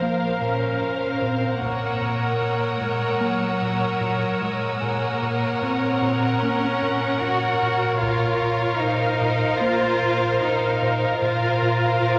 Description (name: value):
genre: cinematic, suspense film score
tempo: 75 BPM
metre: 4/4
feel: straight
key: Bb minor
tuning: A4 = 440 Hz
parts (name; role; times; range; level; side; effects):
- rich chamber violin section; melody; 0.0-12.2 s; F5 to Gb5; -31 LUFS; equal; none
- rich chamber violin section; second line; 0.0-12.2 s; C5 to Db5; -30 LUFS; equal; none
- rich studio viola section; accompaniment; 0.0-12.2 s; Bb4; -29 LUFS; equal; none
- round analog bass; riff; 0.0-12.2 s; Bb2 to Bb3; -31 LUFS; equal; none
- rich chamber cello section; bass; 0.0-12.2 s; F3 to Gb4; -28 LUFS; equal; none
- warm chamber double bass section; bass; 0.0-12.2 s; Bb1; -35 LUFS; equal; none
- taiko ensemble; drums; 1.6-3.2, 8.0-9.6 s; none; -44 LUFS; equal; none
- rich chamber violin section; texture; 1.6-7.6 s; Eb6 to E6; -39 LUFS; equal; none
- Celtic harp; texture; 3.2-12.2 s; Ab4 to F6; -39 LUFS; equal; none
room: wet concert hall reverb, RT60 2.5 s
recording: none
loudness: -22 LUFS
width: mono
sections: 0.0-12.2 A section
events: none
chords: 0.0 Bbsus2; 1.6 Ebm7/Bb; 8.0 Bbsus2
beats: 0.01 0.81 | 1.61 2.41 3.21 4.01 | 4.81 5.61 6.41 7.21 | 8.01 8.81 9.61 10.41 | 11.21 12.01